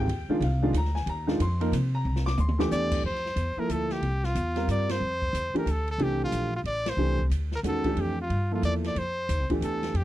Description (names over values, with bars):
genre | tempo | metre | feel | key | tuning
modal jazz | 182 BPM | 3/4 | swing 63% on 8ths | F major from 3.0 s | A4 = 440 Hz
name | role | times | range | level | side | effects
warm baby grand piano | accompaniment | 0.0-9.9 s | Eb3 to D6 | -29 LUFS | equal | none
upright bass | bass | 0.0-10.0 s | A1 to C3 | -28 LUFS | equal | none
open jazz drum kit | drums | 0.1-10.0 s | crash cymbal, hi-hat, kick drum, ride cymbal, snare drum, toms | -37 LUFS | equal | none
clear trumpet | melody | 2.7-10.0 s | F4 to D5 | -30 LUFS | equal | none
room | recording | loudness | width
little or no reverb | dry, close 1970s-style studio recording | -25 LUFS | side -14 dB against mid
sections
0.0-3.0 A section; 3.0-10.0 B section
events
drum fill 2.1-2.7; band accent 4.8, 6.8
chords
0.0 Bb13sus4; 2.1 Cadd9; 3.0 Fmaj9